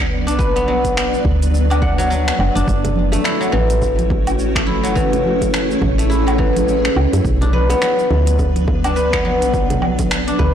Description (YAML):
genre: organic downtempo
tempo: 105 BPM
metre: 4/4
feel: swing 59% on 16ths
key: unclear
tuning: A4 = 440 Hz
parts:
  - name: granular cloud pad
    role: sustained chords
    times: 0.0-10.5 s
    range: F#3 to D5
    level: -22 LUFS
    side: right 1 dB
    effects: built-in reverb, sidechain pumping
  - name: guzheng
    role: arpeggios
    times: 0.0-10.5 s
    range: E3 to F#5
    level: -19 LUFS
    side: left 2 dB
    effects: ping-pong delay
  - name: woody FM bass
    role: bass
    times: 0.0-10.5 s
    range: F#1 to F#2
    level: -19 LUFS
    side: equal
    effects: transformer saturation, sidechain pumping
  - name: organic electronic drum kit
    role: drums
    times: 0.3-10.4 s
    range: cabasa, finger snaps, hi-hat, woodblock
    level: -24 LUFS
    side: right 1 dB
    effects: overdrive, soft clipping on snare
  - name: electronic kick drum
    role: drums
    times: 0.4-10.5 s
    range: none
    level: -22 LUFS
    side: equal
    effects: overdrive
  - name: congas and bongos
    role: percussion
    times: 2.8-10.5 s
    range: none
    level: -25 LUFS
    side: right 3 dB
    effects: none
room: light reverb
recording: blown-out, overdriven recording, overdrive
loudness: -14 LUFS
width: side -9 dB against mid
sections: 0.0-10.5 A section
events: none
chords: 0.0 Bm; 2.7 F#m7; 7.2 Bm